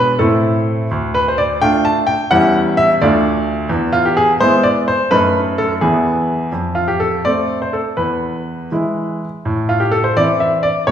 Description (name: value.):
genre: classical-period piano sonatina.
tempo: 85 BPM (dotted quarters).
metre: 6/8.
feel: straight.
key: A minor.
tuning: A4 = 440 Hz.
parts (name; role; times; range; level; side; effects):
bright baby grand piano; solo; 0.0-10.9 s; D2 to A5; -13 LUFS; equal; none.
room: wet recital hall reverb, RT60 1.4 s.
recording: heard from further back in the room.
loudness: -13 LUFS.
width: side -9 dB against mid.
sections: 0.0-9.5 A section; 9.5-10.9 A section.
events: none.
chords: 0.2 Am; 0.9 Dm; 2.3 C#dim/E; 3.0 Dm; 3.7 E; 5.1 D#dim/F#; 5.8 E; 6.5 F; 8.0 E; 9.5 Am.